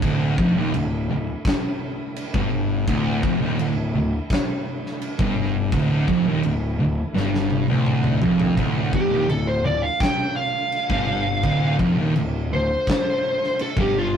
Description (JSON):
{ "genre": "stoner and doom metal", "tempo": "84 BPM", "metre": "4/4", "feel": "straight", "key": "D minor", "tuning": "A4 = 440 Hz", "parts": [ { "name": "percussive tonewheel organ", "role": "sustained chords", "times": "0.0-14.2 s", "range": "D3 to F4", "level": "-36 LUFS", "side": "right 4 dB", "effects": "none" }, { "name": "thick fuzz guitar", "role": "riff", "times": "0.0-14.2 s", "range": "D2 to G2", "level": "-23 LUFS", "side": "left 1 dB", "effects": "distortion" }, { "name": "thick fuzz guitar", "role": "riff", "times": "0.0-14.2 s", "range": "D2 to G2", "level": "-26 LUFS", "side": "right 3 dB", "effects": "distortion" }, { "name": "fuzz picked electric bass", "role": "bass", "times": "0.0-14.2 s", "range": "D1 to G1", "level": "-27 LUFS", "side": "left 1 dB", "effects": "overdrive" }, { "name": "big rock drum kit", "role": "drums", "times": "0.0-13.9 s", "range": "crash cymbal, kick drum, snare drum, toms", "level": "-26 LUFS", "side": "equal", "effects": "none" }, { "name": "fuzz lead guitar", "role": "melody", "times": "8.9-14.2 s", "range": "F4 to G5", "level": "-22 LUFS", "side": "equal", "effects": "distortion" } ], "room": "moderate small room reverb, RT60 0.5 s", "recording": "rough rehearsal-room recording, warm saturation", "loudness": "-19 LUFS", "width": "side -8 dB against mid", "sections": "0.0-8.6 A section; 8.6-14.2 B section", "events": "drum fill 7.2-8.6; lead electric guitar solo 8.6-14.2", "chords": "0.0 Dm" }